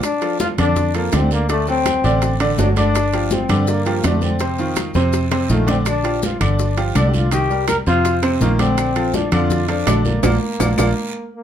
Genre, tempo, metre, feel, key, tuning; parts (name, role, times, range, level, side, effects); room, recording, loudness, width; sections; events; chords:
latin, salsa; 165 BPM; 4/4; straight; Bb major; A4 = 440 Hz
clear trombone; melody; 0.0-11.4 s; A3 to Bb4; -21 LUFS; left 3 dB; plate reverb
bongos; percussion; 0.0-10.9 s; -28 LUFS; left 6 dB
congas; percussion; 0.0-10.9 s; -25 LUFS; left 1 dB
guiro; percussion; 0.0-10.9 s; -35 LUFS; right 7 dB
maracas; percussion; 0.0-10.9 s; -34 LUFS; left 6 dB
timbales; percussion; 0.0-10.9 s; -27 LUFS; right 7 dB
bright upright piano; accompaniment; 0.2-10.9 s; C3 to Eb5; -22 LUFS; right 2 dB
fingered electric bass; bass; 0.6-10.9 s; G1 to G2; -19 LUFS; equal
claves; percussion; 5.9-10.9 s; -32 LUFS; left 1 dB
moderate small room reverb, RT60 0.5 s; -15 LUFS; side -9 dB against mid
0.0-11.4 A section
drum fill 4.8-5.9, 10.2-11.4; band accent 10.2-11.4
0.0 Dm; 1.5 D7; 3.0 Gm7; 4.4 F5; 5.9 Bb6; 6.6 G5; 7.3 Cm7; 8.0 F5; 8.8 Bbmaj7